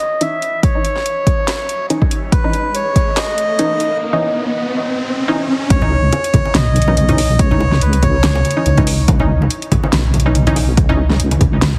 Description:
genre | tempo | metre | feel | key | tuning
deep dubstep | 142 BPM | 4/4 | swing 55% on 16ths, half-time | C# minor | A4 = 440 Hz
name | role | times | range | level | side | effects
melodica | melody | 0.0-8.8 s | B4 to E5 | -22 LUFS | equal | vintage 12-bit sampler grit, low-pass filter, dub echo
deep house drum kit | drums | 0.0-11.7 s | hi-hat, snare drum | -22 LUFS | equal | overdrive, high-pass filter on hats, small room reverb, high-pass filter on toms, high-pass filter on snare
riser | sound effects | 2.5-5.7 s | none | -25 LUFS | equal | none
filtered dub chord stab | stabs | 0.2-11.0 s | E3 to D#4 | -23 LUFS | equal | chorus, cassette tape, dub echo
electronic kick drum | drums | 0.6-3.0, 5.7-11.5 s | none | -18 LUFS | equal | overdrive, small room reverb
deep soft wobble bass | bass | 5.7-11.8 s | B1 to C#2 | -17 LUFS | equal | chorus
congas | percussion | 5.7-11.7 s | none | -22 LUFS | equal | none
room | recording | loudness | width
moderate lush hall reverb, RT60 2.0 s, digital ambience | heavily compressed radio sound, multiband compression | -15 LUFS | mono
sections
0.0-5.7 A section; 5.7-11.8 B section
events
build-up 0.0-5.7; filter sweep on synth stab 0.0-5.7; filter sweep on melodica 0.0-5.7; riser 2.5-5.7; drop 5.7-11.8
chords
0.0 C#madd9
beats
0.21 | 0.63 1.06 1.48 1.90 | 2.32 2.75 3.17 3.59 | 4.01 4.44 4.86 5.28 | 5.70 6.13 6.55 6.97 | 7.39 7.82 8.24 8.66 | 9.08 9.51 9.93 10.35 | 10.77 11.20 11.62

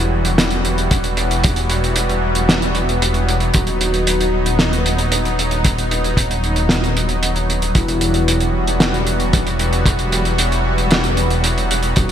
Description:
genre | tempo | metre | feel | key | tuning
synthwave | 114 BPM | 4/4 | straight | E harmonic minor | A4 = 441 Hz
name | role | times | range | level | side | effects
soft octave-layered synth lead | melody | 0.0-0.3, 3.5-4.5, 7.8-8.7, 12.0-12.1 s | E4 to F#4 | -24 LUFS | left 1 dB | chorus, phaser, cassette tape, ping-pong delay
soft supersaw | sustained chords | 0.0-12.1 s | E3 to F#4 | -20 LUFS | equal | wide subtle chorus, sidechain pumping
dark detuned saw bass | bass | 0.0-12.1 s | D#1 to E1 | -20 LUFS | equal | none
cloth-damped thuddy drum kit | drums | 0.2-12.1 s | hi-hat, snare drum | -20 LUFS | right 1 dB | gated reverb
kick drum | drums | 0.9-12.1 s | none | -16 LUFS | equal | none
room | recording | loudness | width
moderate lush hall reverb, RT60 2.5 s | bright 1980s-style digital production | -14 LUFS | side -9 dB against mid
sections
0.0-12.1 A section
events
none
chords
0.0 Emadd9; 3.5 B/D#; 7.8 Emadd9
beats
0.39 0.91 | 1.44 1.96 2.49 3.02 | 3.54 4.07 4.59 5.12 | 5.65 6.17 6.70 7.23 | 7.75 8.28 8.81 9.33 | 9.86 10.38 10.91 11.44 | 11.96

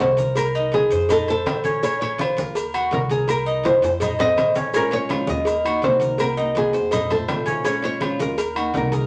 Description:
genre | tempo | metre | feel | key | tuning
latin, Cuban son and guajira | 165 BPM | 4/4 | straight | Bb minor | A4 = 440 Hz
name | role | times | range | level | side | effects
nylon-string guitar | melody | 0.0-9.1 s | Ab4 to Eb5 | -24 LUFS | equal | none
Cuban tres | arpeggios | 0.0-9.1 s | Db4 to C5 | -29 LUFS | equal | none
upright bass | bass | 0.0-9.1 s | Bb1 to F2 | -32 LUFS | equal | none
congas | percussion | 0.0-9.1 s | none | -33 LUFS | equal | none
maracas | percussion | 0.0-9.1 s | none | -47 LUFS | equal | none
timbales and agogo bells | percussion | 0.0-8.9 s | none | -31 LUFS | equal | none
cowbell | percussion | 0.2-9.1 s | none | -33 LUFS | equal | none
flamenco guitar | accompaniment | 4.7-9.1 s | C3 to Gb4 | -31 LUFS | equal | none
room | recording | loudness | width
wet studio reverb, RT60 0.6 s | nothing above 10.9 kHz | -21 LUFS | mono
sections
0.0-9.1 A section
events
drum fill 3.6-4.7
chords
0.4 Ab69/C; 1.1 F7; 1.8 Bbm; 2.6 Ebm; 3.3 Cm7; 4.0 F5; 4.7 Bbm7; 5.5 Ebm; 6.2 Cm7b5; 6.9 F7; 7.7 Bbm7; 8.4 Ebm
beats
0.00 | 0.37 0.73 1.10 1.46 | 1.83 2.19 2.56 2.92 | 3.28 3.65 4.01 4.38 | 4.74 5.11 5.47 5.83 | 6.20 6.56 6.92 7.29 | 7.65 8.02 8.38 8.74

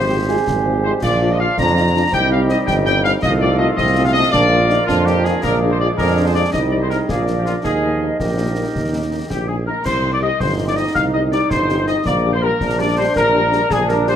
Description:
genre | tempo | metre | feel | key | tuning
military-style march for wind band | 109 BPM (dotted quarters) | 6/8 | straight | unclear | A4 = 440 Hz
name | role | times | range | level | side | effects
mellow trumpet section | melody | 0.0-14.2 s | F4 to Bb5 | -20 LUFS | left 1 dB | none
dark woodwind section | second line | 0.0-14.2 s | F4 to F5 | -24 LUFS | left 2 dB | none
dark trombone section | sustained chords | 0.0-14.2 s | Eb3 to F4 | -24 LUFS | right 2 dB | none
warm tuba | bass | 0.0-14.2 s | G1 to F2 | -20 LUFS | right 2 dB | none
warm euphonium | second line | 0.1-9.5 s | Bb3 to Ab4 | -24 LUFS | right 4 dB | none
dark French horn section | accompaniment | 0.1-14.1 s | F3 to G4 | -27 LUFS | left 5 dB | none
concert snare drum, concert bass drum and clash cymbals | drums | 0.5-14.2 s | none | -27 LUFS | left 1 dB | none
mellow wooden piccolo | second line | 9.3-14.2 s | G5 to F6 | -23 LUFS | left 5 dB | none
room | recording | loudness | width
moderate recital hall reverb, RT60 1.7 s | none | -14 LUFS | side -9 dB against mid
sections
0.0-9.9 A section; 9.9-14.2 A section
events
none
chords
0.0 Fm/Ab; 1.0 Bb; 2.1 Cm; 3.2 F7/C; 4.3 Bb; 5.4 Bb7; 6.5 Cm; 7.1 Bb7; 7.6 Eb; 9.9 Cm; 12.1 Gm/Bb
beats
0.47 | 1.03 1.58 | 2.13 2.68 | 3.23 3.78 | 4.33 4.89 | 5.44 5.99 | 6.54 7.09 | 7.64 8.20 | 8.75 9.30 | 9.85 10.40 | 10.96 11.51 | 12.06 12.61 | 13.16 13.71

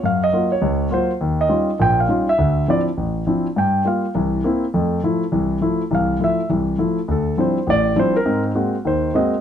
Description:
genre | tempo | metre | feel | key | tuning
jazz | 204 BPM | 4/4 | swing 63% on 8ths | unclear | A4 = 440 Hz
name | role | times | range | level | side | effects
warm concert grand piano | solo | 0.0-9.4 s | A1 to G5 | -17 LUFS | equal | none
room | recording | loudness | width
light reverb | close, detailed microphones | -17 LUFS | side -9 dB against mid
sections
0.0-7.1 A section; 7.1-9.4 B section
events
none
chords
0.0 Gbmaj7; 1.2 Eb9; 2.4 Dm9; 3.6 Gm7; 4.1 C7; 4.7 Fmaj7; 7.1 Dm11; 8.3 Ab9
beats
| 0.03 0.32 0.62 0.91 | 1.20 1.50 1.79 2.08 | 2.38 2.67 2.97 3.26 | 3.55 3.85 4.14 4.43 | 4.73 5.02 5.32 5.61 | 5.90 6.20 6.49 6.78 | 7.08 7.37 7.66 7.96 | 8.25 8.54 8.84 9.13

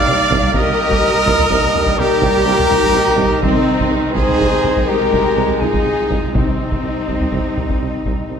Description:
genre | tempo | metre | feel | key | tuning
cinematic, epic orchestral film score | 83 BPM (dotted quarters) | 12/8 | straight | unclear | A4 = 437 Hz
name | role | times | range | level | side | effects
warm symphonic violin section | melody | 0.0-8.4 s | Eb4 to F5 | -27 LUFS | left 2 dB | none
silver concert flute | second line | 0.0-8.4 s | Eb5 to F6 | -25 LUFS | left 3 dB | none
warm symphonic violin section | second line | 0.0-8.4 s | C4 to D5 | -26 LUFS | left 2 dB | none
warm symphonic viola section | accompaniment | 0.0-8.4 s | C4 to D5 | -23 LUFS | right 1 dB | none
dark woodwind section | sustained chords | 0.0-8.4 s | Ab3 to G5 | -28 LUFS | right 1 dB | none
mellow French horn section | sustained chords | 0.0-8.4 s | Eb4 to F5 | -20 LUFS | left 4 dB | none
warm trombone section | sustained chords | 0.0-8.4 s | Eb3 to Ab3 | -26 LUFS | right 3 dB | none
clear trumpet | stabs | 0.0-8.4 s | C4 to D5 | -21 LUFS | right 2 dB | none
warm symphonic cello section | bass | 0.0-8.4 s | C4 to G4 | -25 LUFS | right 2 dB | none
rich symphonic double bass section | bass | 0.1-8.4 s | C2 | -24 LUFS | right 3 dB | none
warm tuba | bass | 0.1-8.3 s | C2 | -25 LUFS | right 6 dB | none
taiko ensemble | drums | 0.3-8.4 s | none | -22 LUFS | equal | none
timpani | percussion | 3.4-7.0 s | C3 | -26 LUFS | equal | none
room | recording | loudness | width
wet scoring stage reverb, RT60 1.7 s | none | -13 LUFS | side -7 dB against mid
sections
0.0-8.4 A section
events
none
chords
0.0 Eb/C; 3.4 Ab/C; 6.3 Cm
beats
| 0.55 1.27 1.98 2.70 | 3.42 4.16 4.88 5.61 | 6.34 7.08 7.82

